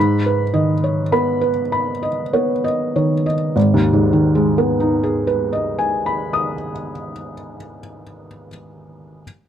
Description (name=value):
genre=neoclassical minimalist piano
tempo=34 BPM (dotted quarters)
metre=6/8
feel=rubato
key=G# minor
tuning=A4 = 439 Hz
part: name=felt-muted upright piano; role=solo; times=0.0-9.2 s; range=G#1 to D#6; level=-17 LUFS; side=equal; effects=none
room=light reverb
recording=close, detailed microphones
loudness=-16 LUFS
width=side -9 dB against mid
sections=0.0-3.6 A section; 3.6-7.0 B section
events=slowing down 0.0-3.6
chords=0.0 G#m